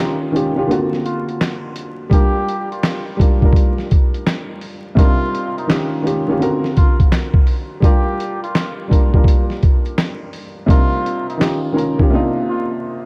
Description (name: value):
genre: lo-fi hip hop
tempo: 84 BPM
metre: 4/4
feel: swing 66% on 16ths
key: unclear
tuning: A4 = 442 Hz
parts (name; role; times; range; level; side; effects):
- trumpet with cup mute; melody; 0.0-12.7 s; Eb4 to G4; -29 LUFS; equal; tape echo
- warm upright piano; accompaniment; 0.0-13.1 s; C3 to Bb4; -22 LUFS; equal; none
- lo-fi sampler-style drum kit; drums; 0.0-12.1 s; handclaps, hi-hat, kick drum, snare drum; -17 LUFS; equal; none
room: moderate plate reverb, RT60 3.4 s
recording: dreamy mix soaked in reverb, vinyl crackle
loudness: -17 LUFS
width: mono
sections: 0.0-13.1 A section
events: break 0.0-2.1; drums muted 12.1-13.1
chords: 0.0 Eb9; 0.7 D7alt; 2.1 Gm7; 5.0 Cm11; 5.7 Eb9; 6.4 D7alt; 7.8 Gm7; 10.7 Cm11; 11.4 Eb9; 12.1 Cm11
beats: 0.69 1.40 | 2.12 2.83 3.54 4.26 | 4.97 5.69 6.40 7.12 | 7.83 8.54 9.26 9.97 | 10.69 11.40 12.12 12.83